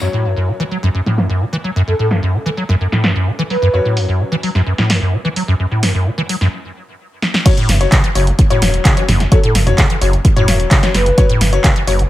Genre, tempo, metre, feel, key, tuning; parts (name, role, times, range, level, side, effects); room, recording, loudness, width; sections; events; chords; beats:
acid house; 129 BPM; 4/4; straight; F# minor pentatonic; A4 = 440 Hz
acid bass, square; riff; 0.0-12.0 s; F#1 to F#3; -16 LUFS; equal; wide subtle chorus, sidechain pumping, dub echo
bright grand piano; stabs; 0.0-11.9 s; F#3 to C#5; -22 LUFS; left 7 dB; dub echo
punchy analog drum machine; drums; 0.2-12.1 s; crash cymbal, handclaps, hi-hat, snare drum, toms; -18 LUFS; equal; low-pass filter on hats, low-pass filter on snare, low-pass filter on toms, low-pass filter on cymbals, low-pass filter on room
breathy flute-like synth lead; melody; 1.9-3.9, 9.3-11.3 s; A4 to B4; -22 LUFS; right 1 dB; chorus, phaser, tape echo
electronic kick drum; drums; 7.5-11.7 s; -12 LUFS; equal
round analog bass; bass; 7.7-12.0 s; E1 to F#1; -15 LUFS; equal; tube saturation, sidechain pumping
light reverb, digital ambience; -12 LUFS; side -14 dB against mid
0.0-7.5 A section; 7.5-12.1 B section
filter sweep on drum 0.0-7.5; break 6.5-7.5; drum fill 7.2; drop 7.5-12.1
0.0 F#5
| 0.01 0.48 0.94 1.41 | 1.88 2.34 2.81 3.27 | 3.74 4.20 4.67 5.13 | 5.60 6.06 6.53 6.99 | 7.46 7.92 8.39 8.85 | 9.32 9.78 10.25 10.71 | 11.18 11.64